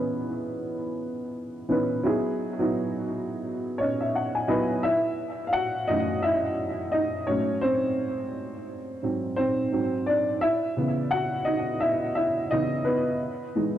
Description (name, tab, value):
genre	hip hop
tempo	86 BPM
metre	4/4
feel	swing 60% on 16ths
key	F# dorian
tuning	A4 = 440 Hz
part	dark upright piano	solo	0.0-13.8 s	F#2 to B5	-24 LUFS	equal	low-pass filter, analog delay
room	moderate plate reverb, RT60 2.9 s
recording	cassette tape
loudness	-24 LUFS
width	side -11 dB against mid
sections	0.0-4.8 A section; 4.8-13.8 B section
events	filter sweep on upright piano 0.0-4.8; upright piano fill 3.4-4.8; upright piano solo 4.8-13.8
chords	0.0 C#m9; 2.1 Emaj9; 4.8 F#m7; 7.3 G#7b9; 9.7 G#7#11; 10.4 C#m9; 13.2 Emaj7